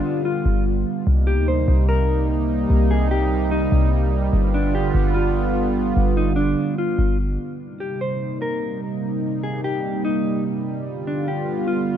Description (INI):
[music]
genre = hip hop, atmospheric cloud-rap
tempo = 147 BPM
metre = 4/4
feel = half-time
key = C minor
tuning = A4 = 440 Hz
[part]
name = mellow electric guitar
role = melody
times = 0.0-12.0 s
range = D4 to C5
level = -26 LUFS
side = left 2 dB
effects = wide subtle chorus, tape echo
[part]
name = warm analog pad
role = sustained chords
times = 0.0-12.0 s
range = C3 to F4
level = -22 LUFS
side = right 2 dB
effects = chorus
[part]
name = clean 808-style bass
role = bass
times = 0.0-7.4 s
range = G1 to D2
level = -20 LUFS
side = equal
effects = none
[sound]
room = little or no reverb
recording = rough home demo mix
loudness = -18 LUFS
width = side -10 dB against mid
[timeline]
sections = 0.0-7.6 A section; 7.6-12.0 B section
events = none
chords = 0.0 G7; 1.1 Cm7; 4.3 G7; 7.6 Cm7; 10.9 G7